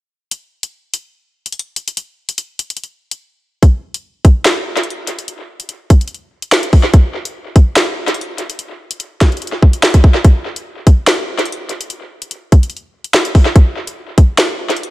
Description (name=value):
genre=hip hop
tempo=145 BPM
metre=4/4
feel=half-time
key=none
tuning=none
part: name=drill drum kit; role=drums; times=0.3-14.9 s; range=handclaps, hi-hat, kick drum, snare drum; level=-10 LUFS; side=equal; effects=tape echo
room=light reverb, digital ambience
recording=echo-heavy mix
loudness=-11 LUFS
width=side -18 dB against mid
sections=0.3-3.6 A section; 3.6-14.9 B section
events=drums muted 3.2-3.6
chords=none